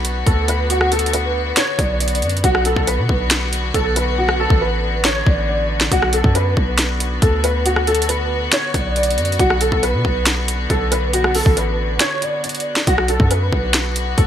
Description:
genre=hip hop, trap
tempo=138 BPM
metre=4/4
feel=half-time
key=B minor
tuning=A4 = 440 Hz
part: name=dark concert grand piano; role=melody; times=0.0-14.3 s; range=F#4 to D5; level=-20 LUFS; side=equal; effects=ensemble chorus, low-pass filter, digital delay
part: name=rich studio string section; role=sustained chords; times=0.0-14.3 s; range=D3 to F#4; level=-24 LUFS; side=left 3 dB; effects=none
part: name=hard-hitting 808-style bass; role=bass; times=0.0-14.3 s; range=A1 to B2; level=-20 LUFS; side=equal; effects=none
part: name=trap drum kit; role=drums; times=0.0-14.3 s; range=hi-hat, kick drum, rim click, snare drum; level=-18 LUFS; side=equal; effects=none
room=light reverb, digital ambience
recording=bright 1980s-style digital production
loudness=-15 LUFS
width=side -10 dB against mid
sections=0.0-12.9 A section; 12.9-14.3 A section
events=hi-hats muted 4.2-5.9; break 12.0-12.9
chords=0.0 Bm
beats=0.26 | 0.70 1.13 1.57 2.00 | 2.44 2.87 3.31 3.74 | 4.18 4.61 5.05 5.48 | 5.92 6.35 6.79 7.22 | 7.66 8.09 8.53 8.96 | 9.39 9.83 10.26 10.70 | 11.13 11.57 12.00 12.44 | 12.87 13.31 13.74 14.18

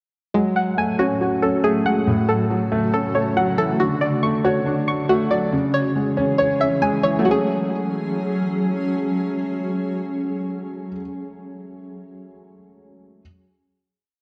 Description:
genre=hip hop, drill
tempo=139 BPM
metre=4/4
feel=half-time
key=F# minor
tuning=A4 = 440 Hz
part: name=dark concert grand piano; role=accompaniment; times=0.3-13.2 s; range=A2 to C#5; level=-24 LUFS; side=equal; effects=low-pass filter
part: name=granular cloud pad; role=sustained chords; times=0.9-10.9 s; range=A2 to G#4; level=-29 LUFS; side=equal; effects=built-in reverb
part: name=string-like resonator pluck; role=arpeggios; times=0.3-11.0 s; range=G#3 to C#6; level=-24 LUFS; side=equal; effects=chorus, low-pass filter, tape echo
room=wet lush hall reverb, RT60 2.7 s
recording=dark, warm production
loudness=-21 LUFS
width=mono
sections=0.3-7.3 breakdown; 7.3-10.7 final chord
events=none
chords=0.3 F#madd9; 2.1 A6; 3.8 Dmaj7; 5.5 C#m; 7.3 F#madd9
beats=| 0.34 0.78 1.21 1.64 | 2.07 2.50 2.94 3.37 | 3.80 4.23 4.66 5.09 | 5.52 5.96 6.39 6.82 | 7.25 7.68 8.11 8.55 | 8.98 9.41 9.84 10.27

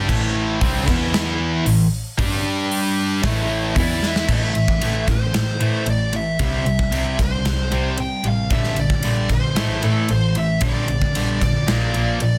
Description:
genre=hard rock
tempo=114 BPM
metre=4/4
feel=straight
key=A phrygian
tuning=A4 = 438 Hz
part: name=high-gain distorted guitar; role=riff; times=0.0-4.3 s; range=A2 to G4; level=-27 LUFS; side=equal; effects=distortion
part: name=overdriven semi-hollow guitar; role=riff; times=0.0-12.4 s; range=G2 to G4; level=-29 LUFS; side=equal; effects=none
part: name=sludgy distorted guitar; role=riff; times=0.0-12.4 s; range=G2 to G4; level=-27 LUFS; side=equal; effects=overdrive
part: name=warm double bass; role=bass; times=0.0-12.4 s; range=A1 to C3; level=-25 LUFS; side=equal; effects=none
part: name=gated 80s drum kit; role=drums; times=0.1-12.3 s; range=crash cymbal, hi-hat, kick drum, ride cymbal, snare drum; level=-26 LUFS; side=equal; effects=none
part: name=smooth overdriven lead guitar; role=melody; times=3.8-12.4 s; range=A4 to G5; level=-28 LUFS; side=equal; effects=slapback echo
room=light reverb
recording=dense, heavily limited modern master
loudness=-20 LUFS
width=mono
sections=0.0-4.3 A section; 4.3-12.4 B section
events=drum fill 4.0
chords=0.0 Am; 0.9 E5; 1.7 A5; 2.2 G5; 3.2 A5; 3.8 E5; 4.3 Am; 6.4 C; 8.5 Gm/Bb; 9.6 A5; 10.6 Gm/Bb; 11.7 Bb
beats=| 0.09 0.61 1.14 1.66 | 2.19 2.71 3.24 3.76 | 4.29 4.82 5.34 5.87 | 6.40 6.92 7.45 7.98 | 8.51 9.04 9.57 10.09 | 10.62 11.15 11.68 12.21

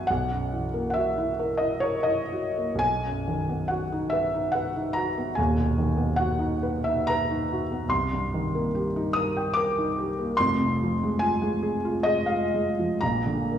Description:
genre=classical, romantic nocturne for solo piano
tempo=56-77 BPM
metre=3/4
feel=rubato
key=B major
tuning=A4 = 440 Hz
part: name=felt-muted upright piano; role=solo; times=0.0-13.6 s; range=D#1 to Eb6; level=-23 LUFS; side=equal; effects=none
room=wet recital hall reverb, RT60 1.5 s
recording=heard from further back in the room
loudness=-23 LUFS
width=side -9 dB against mid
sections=0.0-13.6 A section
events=none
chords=0.1 F#7/B; 2.8 B; 5.4 B/D#; 7.9 Cm7; 10.4 Fm; 13.0 Bb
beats=| 0.09 0.94 1.82 | 2.82 3.71 4.55 | 5.38 6.17 7.08 | 7.90 8.73 9.55 | 10.38 11.20 12.04 | 13.02

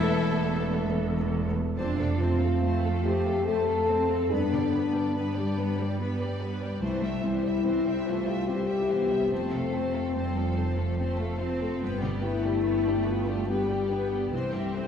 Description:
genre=cinematic, emotional film score for orchestra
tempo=72 BPM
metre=3/4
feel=rubato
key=unclear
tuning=A4 = 440 Hz
part: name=warm symphonic violin section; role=melody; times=0.0-14.9 s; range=D5 to B5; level=-44 LUFS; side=left 2 dB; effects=none
part: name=bright small flute group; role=second line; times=0.0-0.9 s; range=E5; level=-41 LUFS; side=left 1 dB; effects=none
part: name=clear oboe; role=second line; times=0.0-0.9 s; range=E4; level=-37 LUFS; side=equal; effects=none
part: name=dark clarinet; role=second line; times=0.0-0.8 s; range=E4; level=-37 LUFS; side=left 10 dB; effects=none
part: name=rich studio violin section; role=second line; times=0.0-14.9 s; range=G4 to E5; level=-38 LUFS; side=left 1 dB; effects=none
part: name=felt-muted upright piano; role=accompaniment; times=0.0-14.9 s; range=C2 to C5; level=-33 LUFS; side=left 2 dB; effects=none
part: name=rich symphonic viola section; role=accompaniment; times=0.0-14.9 s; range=E3 to A4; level=-38 LUFS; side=right 1 dB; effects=none
part: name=mellow French horn section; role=sustained chords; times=0.0-14.9 s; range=A3 to A4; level=-29 LUFS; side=left 4 dB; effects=none
part: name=rich studio cello section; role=bass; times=0.0-14.9 s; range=E2 to D4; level=-33 LUFS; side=right 2 dB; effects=none
part: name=rich symphonic double bass section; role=bass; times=0.0-14.9 s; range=E1 to G2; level=-31 LUFS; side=right 2 dB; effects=none
room=wet concert hall reverb, RT60 1.9 s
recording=heard from further back in the room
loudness=-25 LUFS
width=side -8 dB against mid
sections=0.0-1.8 A section; 1.8-14.9 B section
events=none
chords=0.0 Esus4; 1.8 F; 4.3 G; 6.8 C; 9.3 F; 11.8 G; 14.3 C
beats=0.01 0.88 | 1.77 2.62 3.46 | 4.31 5.15 5.99 | 6.82 7.65 8.48 | 9.31 10.15 10.98 | 11.81 12.65 13.48 | 14.33

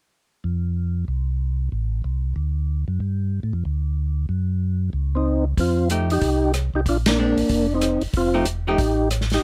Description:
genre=soul jazz organ trio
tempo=187 BPM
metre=4/4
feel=swing 63% on 8ths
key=F mixolydian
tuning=A4 = 438 Hz
part: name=mellow tonewheel organ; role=bass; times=0.4-9.4 s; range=E1 to A2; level=-25 LUFS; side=equal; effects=slow rotary speaker
part: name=percussive tonewheel organ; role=melody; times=5.2-9.4 s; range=Bb3 to G4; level=-23 LUFS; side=equal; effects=slow rotary speaker
part: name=warm soul drum kit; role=drums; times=5.6-9.4 s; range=hi-hat, kick drum, ride cymbal, rim click, snare drum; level=-28 LUFS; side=equal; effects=none
part: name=hollow-body jazz guitar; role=accompaniment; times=5.9-8.8 s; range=F3 to G4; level=-27 LUFS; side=equal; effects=none
room=little or no reverb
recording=none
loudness=-22 LUFS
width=mono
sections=0.4-5.6 A section; 5.6-9.4 B section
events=band accent 7.0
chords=0.4 F5; 1.7 Am; 2.4 D; 3.0 Gsus2; 4.3 Gb5; 5.6 F9; 6.9 Bb9; 8.1 F9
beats=| 0.44 0.76 1.08 1.40 | 1.72 2.04 2.36 2.69 | 3.01 3.33 3.65 3.97 | 4.29 4.61 4.93 5.25 | 5.58 5.90 6.22 6.54 | 6.86 7.18 7.50 7.82 | 8.14 8.47 8.79 9.11 | 9.43

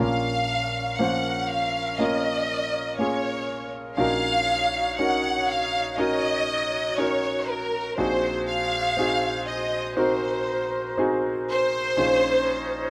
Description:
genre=pop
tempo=60 BPM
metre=4/4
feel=straight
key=Bb minor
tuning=A4 = 441 Hz
part: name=warm studio violin section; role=melody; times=0.0-12.9 s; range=Bb4 to Gb5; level=-27 LUFS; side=equal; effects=none
part: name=clear concert grand piano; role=accompaniment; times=0.0-12.9 s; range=Bb1 to C5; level=-29 LUFS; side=equal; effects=none
part: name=bright flute section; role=sustained chords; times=0.0-12.9 s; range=Db4 to Db5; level=-37 LUFS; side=equal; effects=none
room=light reverb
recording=rough home demo mix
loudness=-25 LUFS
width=mono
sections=0.0-12.9 A section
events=none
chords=0.0 Bbm; 4.0 Ebm7/Bb; 8.0 Ab7/Bb; 12.0 Dbadd9/Bb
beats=0.99 1.99 2.99 | 3.99 4.99 5.99 6.99 | 7.99 8.99 9.99 10.99 | 11.99

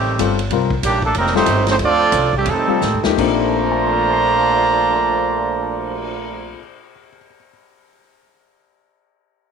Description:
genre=jazz, big band swing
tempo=162-190 BPM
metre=4/4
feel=swing 62% on 8ths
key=Bb major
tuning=A4 = 440 Hz
part: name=warm trumpet section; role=melody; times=0.0-6.5 s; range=G3 to Bb5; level=-17 LUFS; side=right 2 dB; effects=none
part: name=warm trombone section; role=second line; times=0.0-6.5 s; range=Bb2 to D4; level=-23 LUFS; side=right 11 dB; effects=none
part: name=upright bass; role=bass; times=0.0-6.5 s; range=F1 to A2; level=-24 LUFS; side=left 1 dB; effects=none
part: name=warm concert grand piano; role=accompaniment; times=0.2-7.5 s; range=Bb2 to C7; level=-21 LUFS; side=left 13 dB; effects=none
part: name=swinging big-band drum kit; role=drums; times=0.2-6.1 s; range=crash cymbal, cymbal swell, hi-hat, kick drum, ride cymbal, snare drum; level=-27 LUFS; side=equal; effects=none
room=light reverb, studio reverb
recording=1960s-style stereo with parts hard left and right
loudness=-14 LUFS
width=side -6 dB against mid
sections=0.0-3.2 A section; 3.2-6.1 B section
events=slowing down 0.5-3.2; drum fill 2.8-3.2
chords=0.5 Cm9; 1.1 F9; 1.8 Dm7; 2.5 F9; 3.2 Bbmaj9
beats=0.18 | 0.50 0.81 1.13 1.46 | 1.78 2.12 2.46 2.81 | 3.18 3.55 3.92 4.29 | 4.66 5.03 5.40 5.77

